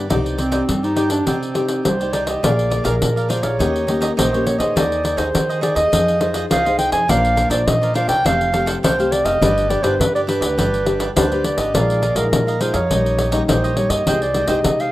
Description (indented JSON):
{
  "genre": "samba and choro",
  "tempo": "103 BPM",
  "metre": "4/4",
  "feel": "straight",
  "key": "unclear",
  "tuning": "A4 = 440 Hz",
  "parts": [
    { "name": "cavaquinho", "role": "accompaniment", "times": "0.0-14.9 s", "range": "D4 to G5", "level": "-27 LUFS", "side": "right 4 dB", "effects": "none" },
    { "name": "nylon-string guitar", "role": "accompaniment", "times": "0.0-14.9 s", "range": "Bb2 to D5", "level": "-23 LUFS", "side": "left 2 dB", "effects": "none" },
    { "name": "upright bass", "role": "bass", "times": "0.0-14.9 s", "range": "F1 to Eb3", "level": "-23 LUFS", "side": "equal", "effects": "none" },
    { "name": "pandeiro", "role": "percussion", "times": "0.1-14.9 s", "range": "none", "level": "-22 LUFS", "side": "left 2 dB", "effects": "none" },
    { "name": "warm clarinet", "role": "melody", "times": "0.4-14.9 s", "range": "C4 to Ab5", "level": "-20 LUFS", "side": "right 1 dB", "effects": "none" }
  ],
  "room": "light reverb, small room reverb",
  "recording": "rough home demo mix",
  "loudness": "-15 LUFS",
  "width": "side -16 dB against mid",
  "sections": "0.0-2.4 A section; 2.4-14.9 B section",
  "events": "none",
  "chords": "0.1 Cmadd9; 2.4 Bb7; 3.6 Eb7; 4.8 Ab/Eb; 5.9 Fm7; 7.1 Bbadd9; 8.3 Fadd9; 9.4 G; 11.7 Bb7sus4; 12.9 Eb7/Bb; 14.1 Abmaj7/C"
}